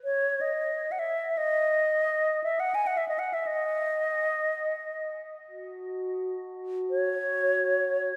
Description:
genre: world meditative, free-time meditation music.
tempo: free time.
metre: none.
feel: none.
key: unclear.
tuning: A4 = 441 Hz.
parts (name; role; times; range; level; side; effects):
bright alto flute; melody; 0.0-8.2 s; C#5 to G#5; -28 LUFS; equal; diffuse ambient delay.
glass harmonica; texture; 5.5-8.2 s; F#4; -35 LUFS; equal; none.
room: wet church reverb, RT60 3.0 s.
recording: none.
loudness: -28 LUFS.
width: mono.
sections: 0.0-8.2 A section.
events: none.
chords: none.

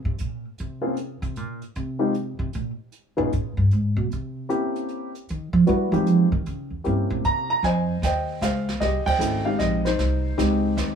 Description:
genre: jazz piano trio.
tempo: 153 BPM.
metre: 3/4.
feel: swing 66% on 8ths.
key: F minor.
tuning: A4 = 440 Hz.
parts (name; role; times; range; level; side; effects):
upright bass; bass; 0.1-11.0 s; Ab1 to G3; -24 LUFS; right 2 dB; none.
jazz brush drum kit; drums; 0.2-11.0 s; brushed snare drum, hi-hat, kick drum, ride cymbal, snare drum; -32 LUFS; right 4 dB; none.
dark upright piano; melody; 0.8-11.0 s; G3 to Bb5; -24 LUFS; left 2 dB; plate reverb.
room: light reverb.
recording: none.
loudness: -21 LUFS.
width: side -7 dB against mid.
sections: 0.0-7.6 A section; 7.6-11.0 B section.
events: upright bass solo 0.0-7.6; band accent 9.0.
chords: 0.0 Bbsus2; 2.9 Db7(no3) (rootless); 4.1 C7b9; 5.3 Fm9; 6.4 C7b9; 7.6 Fm9.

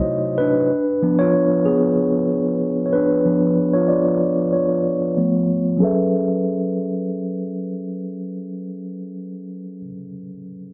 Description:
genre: R&B.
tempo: 94 BPM.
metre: 4/4.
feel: swing 53% on 16ths.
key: F# harmonic minor.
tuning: A4 = 440 Hz.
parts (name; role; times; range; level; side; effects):
mellow tine electric piano; accompaniment; 0.0-10.7 s; B#2 to E5; -20 LUFS; equal; low-pass filter, plate reverb.
room: moderate studio reverb, RT60 0.6 s.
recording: none.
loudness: -19 LUFS.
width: mono.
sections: 0.0-5.8 A section; 5.8-8.4 B section.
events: tine electric piano solo 0.0-5.8; filter sweep on tine electric piano 0.0-5.8.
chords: 0.0 G#7b9 (rootless); 0.7 C#7b9; 5.2 C#aug7; 5.8 F#m11.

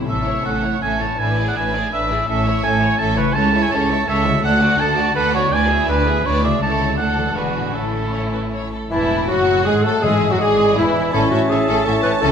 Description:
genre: classical.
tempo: 164 BPM.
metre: 3/4.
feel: rubato.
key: A major.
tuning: A4 = 440 Hz.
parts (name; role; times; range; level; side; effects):
warm symphonic violin section; melody; 0.0-12.3 s; E4 to A5; -27 LUFS; left 3 dB; none.
rich symphonic violin section; second line; 0.0-12.3 s; E4 to E5; -25 LUFS; equal; none.
rich symphonic viola section; accompaniment; 0.0-12.3 s; E3 to F#4; -27 LUFS; right 1 dB; none.
concert harp; arpeggios; 0.0-12.3 s; A2 to E5; -27 LUFS; left 10 dB; none.
timpani; percussion; 0.0, 10.0-11.7 s; A2; -28 LUFS; left 1 dB; none.
mellow cor anglais; second line; 0.1-12.3 s; A4 to A5; -21 LUFS; right 2 dB; none.
rich symphonic cello section; bass; 0.1-12.3 s; C#2 to C#3; -24 LUFS; right 2 dB; none.
rich symphonic double bass section; bass; 0.1-12.3 s; E1 to D2; -25 LUFS; right 2 dB; none.
clear clarinet; second line; 8.9-12.3 s; E4 to B4; -21 LUFS; equal; none.
wooden flute; second line; 8.9-12.3 s; E4 to F#5; -24 LUFS; left 1 dB; none.
warm bassoon; accompaniment; 8.9-12.3 s; E3 to C#4; -24 LUFS; right 3 dB; none.
mellow French horn section; sustained chords; 8.9-12.3 s; E3 to E4; -23 LUFS; left 4 dB; none.
room: moderate scoring stage reverb, RT60 1.5 s.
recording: none.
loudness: -15 LUFS.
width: side -7 dB against mid.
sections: 0.1-8.9 A section; 8.9-12.3 A section.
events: none.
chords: 0.1 A; 1.2 E7/A; 2.3 A; 3.3 A/C#; 4.4 D; 5.5 E7/D; 6.6 A/C#; 7.0 D; 7.4 E9; 7.7 A; 8.9 A/E; 10.0 E7/G#; 11.1 A.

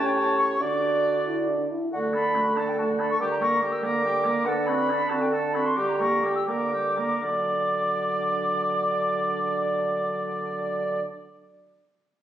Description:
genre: quick classical-period movement for wind quintet.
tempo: 78-95 BPM (dotted quarters).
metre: 6/8.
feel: straight.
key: D major.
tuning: A4 = 441 Hz.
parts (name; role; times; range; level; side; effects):
silver concert flute; melody; 0.0-11.0 s; F#5 to E6; -27 LUFS; left 1 dB; none.
warm oboe; second line; 0.0-11.0 s; F#4 to D5; -29 LUFS; equal; none.
mellow French horn; accompaniment; 0.0-11.0 s; F#3 to B4; -31 LUFS; equal; none.
warm clarinet; accompaniment; 0.0-11.0 s; G3 to G4; -33 LUFS; right 4 dB; none.
mellow bassoon; bass; 0.0-11.0 s; A2 to D3; -29 LUFS; right 2 dB; none.
room: moderate recital hall reverb, RT60 1.4 s.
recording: recorded on a phone in the room, studio ambience.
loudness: -22 LUFS.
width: side -11 dB against mid.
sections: 0.0-1.9 A section; 1.9-7.2 B section; 7.2-10.3 C section.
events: slowing down 3.8-7.2.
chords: 0.0 A7; 0.6 D; 3.2 Gm/D; 4.5 D7; 5.8 Gm/D; 7.2 D.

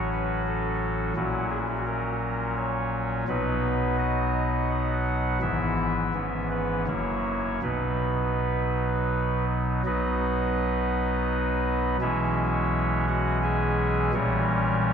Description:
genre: classical, chorale-style piece for pipe organ.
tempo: 84 BPM.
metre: 3/4.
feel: straight.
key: B major.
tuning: A4 = 441 Hz.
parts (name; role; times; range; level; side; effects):
chamber organ, soft reed; solo; 0.0-14.9 s; F#1 to G#5; -24 LUFS; equal; none.
room: wet church reverb, RT60 3.2 s.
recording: dark, warm production.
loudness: -24 LUFS.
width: side -7 dB against mid.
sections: 0.0-9.9 A section; 9.9-14.9 B section.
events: none.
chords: 0.0 F#m/A; 1.2 F#7/A#; 3.3 B; 5.4 E/G#; 6.2 C#m7/G#; 6.9 F#7; 7.6 B; 12.0 C#m7/B; 14.1 A#dim7.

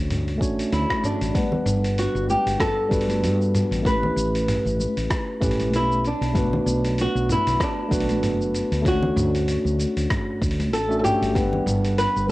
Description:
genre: sunset chillout.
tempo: 96 BPM.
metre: 4/4.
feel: swing 57% on 16ths.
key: G lydian.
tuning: A4 = 440 Hz.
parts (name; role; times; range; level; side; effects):
flamenco guitar; melody; 0.0-12.3 s; D4 to B4; -25 LUFS; equal; cassette tape, analog delay.
tine electric piano; accompaniment; 0.0-12.3 s; G3 to F#5; -25 LUFS; equal; auto-pan, cassette tape.
woody fretless electric bass; bass; 0.0-12.3 s; F#1 to G2; -25 LUFS; equal; none.
dusty soul sampler-style drum kit; drums; 0.1-12.3 s; cabasa, hi-hat, rim click, toms; -30 LUFS; equal; cassette tape.
congas; percussion; 0.3-12.3 s; none; -31 LUFS; left 2 dB; none.
electronic kick drum; drums; 0.4-11.5 s; none; -26 LUFS; equal; overdrive, cassette tape.
room: light reverb, digital ambience.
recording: home recording on cassette.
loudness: -20 LUFS.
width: side -18 dB against mid.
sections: 0.0-1.4 A section; 1.4-12.3 B section.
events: none.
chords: 0.0 Dmaj7; 1.4 Gmaj7; 3.9 A9; 6.0 Bm7; 8.9 Dmaj7; 11.4 Gmaj7.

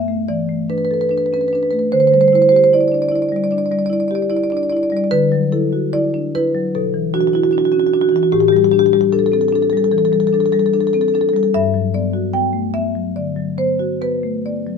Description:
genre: classical, contemporary piece for solo marimba.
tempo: 75 BPM.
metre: 4/4.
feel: rubato.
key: G major from 5.1 s.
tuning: A4 = 440 Hz.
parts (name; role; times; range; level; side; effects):
marimba with soft mallets; solo; 0.0-14.8 s; G2 to G5; -14 LUFS; left 1 dB; none.
room: light reverb.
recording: minimal, uncompressed stereo recording.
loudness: -14 LUFS.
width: side -5 dB against mid.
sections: 0.0-14.8 A section.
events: none.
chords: 0.3 E7sus4; 1.9 D9sus4; 5.1 Dadd9; 6.7 Bmadd9; 8.3 A7sus4; 11.5 Gmaj7.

